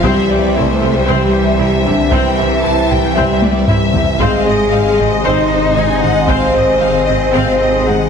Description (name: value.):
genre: cinematic, hybrid orchestral and electronic film score.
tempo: 115 BPM.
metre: 4/4.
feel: straight.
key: unclear.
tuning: A4 = 439 Hz.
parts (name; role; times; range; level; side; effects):
warm symphonic violin section; melody; 0.0-8.1 s; Eb5 to E5; -23 LUFS; left 4 dB; none.
warm symphonic violin section; second line; 0.0-8.1 s; C5 to A5; -20 LUFS; left 3 dB; none.
clear studio viola section; accompaniment; 0.0-7.9 s; C4 to C5; -21 LUFS; equal; none.
bright trombone section; sustained chords; 0.0-8.1 s; C3 to Ab3; -21 LUFS; right 4 dB; none.
ethereal airy pad; sustained chords; 0.0-8.1 s; Eb3 to E5; -22 LUFS; left 1 dB; ensemble chorus, built-in reverb, tremolo.
mellow French horn section; sustained chords; 0.0-8.1 s; D4 to Eb5; -17 LUFS; left 4 dB; none.
phased detuned saw bass; bass; 0.0-8.1 s; Ab1 to C2; -21 LUFS; equal; phaser.
rich studio cello section; bass; 0.0-8.1 s; D3 to Eb4; -19 LUFS; right 3 dB; none.
rich symphonic double bass section; bass; 0.0-7.9 s; Ab1 to C2; -21 LUFS; right 3 dB; none.
taiko ensemble; drums; 0.0-6.8 s; none; -18 LUFS; equal; none.
room: wet scoring stage reverb, RT60 1.6 s.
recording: heavily compressed radio sound, multiband compression.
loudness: -11 LUFS.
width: side -6 dB against mid.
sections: 0.0-8.1 A section.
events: drum fill 3.4-4.2.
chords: 0.0 C; 4.2 Ab.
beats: | 0.03 0.55 1.07 1.59 | 2.12 2.64 3.16 3.68 | 4.20 4.73 5.25 5.77 | 6.29 6.81 7.33 7.86.